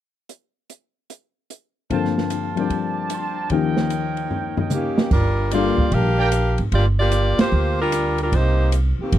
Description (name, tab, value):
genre	jazz, big band swing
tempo	150 BPM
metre	4/4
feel	swing 66% on 8ths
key	G minor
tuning	A4 = 441 Hz
part	open jazz drum kit	drums	0.3-9.2 s	crash cymbal, hi-hat, kick drum, ride cymbal, snare drum, toms	-24 LUFS	right 1 dB	none
part	dark baby grand piano	accompaniment	1.9-6.1 s	Eb2 to Bb4	-23 LUFS	left 8 dB	none
part	clear trumpet section	stabs	1.9-6.3 s	Bb4 to D6	-27 LUFS	right 5 dB	none
part	bright saxophone section	melody	4.7-9.2 s	Eb3 to F5	-21 LUFS	equal	none
part	upright bass	bass	5.1-9.2 s	G1 to D2	-19 LUFS	right 1 dB	none
room	little or no reverb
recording	dry, close 1970s-style studio recording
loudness	-18 LUFS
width	side -12 dB against mid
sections	0.3-1.9 A section; 1.9-5.1 B section; 5.1-9.2 C section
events	drum fill 4.3-5.1; band accent 7.3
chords	0.3 N.C.; 1.9 Gm11; 3.5 Eb7; 5.1 Gm7; 8.3 Gm